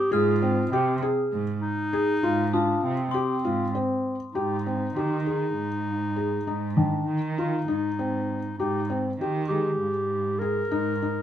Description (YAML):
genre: contemporary instrumental, chamber music in an uneven meter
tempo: 198 BPM (eighths)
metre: 7/8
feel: straight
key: Ab lydian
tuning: A4 = 436 Hz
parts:
  - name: dark clarinet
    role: second line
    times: 0.0-11.2 s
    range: C4 to Bb4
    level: -28 LUFS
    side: left 1 dB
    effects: none
  - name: glockenspiel with soft plastic mallets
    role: texture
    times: 0.0-4.6 s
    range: C6 to F6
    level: -37 LUFS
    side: left 3 dB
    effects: none
  - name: felt-muted upright piano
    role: arpeggios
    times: 0.1-11.2 s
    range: Eb3 to Ab4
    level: -26 LUFS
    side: left 2 dB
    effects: none
  - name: dark cello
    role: bass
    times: 0.1-11.2 s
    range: Ab2 to Eb3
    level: -30 LUFS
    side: right 4 dB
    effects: none
room: light reverb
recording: minimal, uncompressed stereo recording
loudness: -24 LUFS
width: side -10 dB against mid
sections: 0.0-4.3 A section; 4.3-11.2 B section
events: none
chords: 0.0 Fm/Ab; 4.3 Ab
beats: | 0.10 0.41 0.71 1.01 1.31 1.62 1.92 | 2.22 2.53 2.83 3.13 3.44 3.74 4.04 | 4.34 4.65 4.95 5.25 5.56 5.86 6.17 | 6.47 6.77 7.08 7.38 7.68 7.98 8.29 | 8.59 8.89 9.20 9.50 9.80 10.10 10.41 | 10.71 11.01